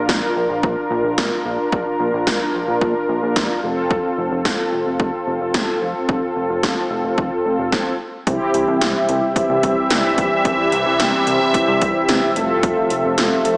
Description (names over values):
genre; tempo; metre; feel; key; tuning
synth-pop; 110 BPM; 4/4; straight; F major; A4 = 445 Hz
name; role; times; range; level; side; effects
mellow synth brass; accompaniment; 0.0-13.6 s; C4 to Bb4; -19 LUFS; equal; chorus
chorused synth bass; bass; 0.0-13.6 s; F1 to C2; -25 LUFS; equal; none
80s electronic pad drums; drums; 0.1-13.6 s; hi-hat, kick drum, snare drum; -22 LUFS; equal; overdrive, gated reverb
sweeping resonant pad; sustained chords; 8.3-13.6 s; C3 to E5; -19 LUFS; equal; chorus
room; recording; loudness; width
moderate lush hall reverb, RT60 2.7 s; small speaker sound; -16 LUFS; side -28 dB against mid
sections
0.0-8.3 A section; 8.3-13.6 B section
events
stop 7.7-8.3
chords
0.0 Bb; 3.6 F; 8.3 C; 12.4 Fmaj7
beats
0.09 0.63 1.18 | 1.72 2.27 2.81 3.36 | 3.91 4.45 5.00 5.54 | 6.09 6.63 7.18 7.72 | 8.27 8.81 9.36 9.91 | 10.45 11.00 11.54 12.09 | 12.63 13.18